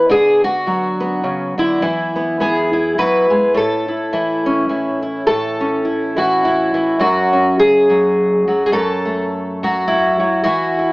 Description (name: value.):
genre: folk, solo fingerstyle acoustic guitar.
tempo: 104 BPM.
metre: 3/4.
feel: swing 57% on 8ths.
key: A major.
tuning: A4 = 442 Hz.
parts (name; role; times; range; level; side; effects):
fingerpicked twelve-string acoustic guitar; solo; 0.0-10.9 s; F#2 to B4; -14 LUFS; equal; none.
room: light reverb.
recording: AM radio sound.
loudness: -14 LUFS.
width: side -24 dB against mid.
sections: 0.0-5.3 A section; 5.3-10.9 B section.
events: none.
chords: 0.1 Bm/D; 1.8 Eadd9; 3.5 A; 7.0 F#sus2; 8.7 F#m7.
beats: | 0.10 0.67 1.25 | 1.82 2.40 2.97 | 3.54 4.12 4.69 | 5.27 5.84 6.42 | 7.00 7.57 8.15 | 8.72 9.30 9.87 | 10.45.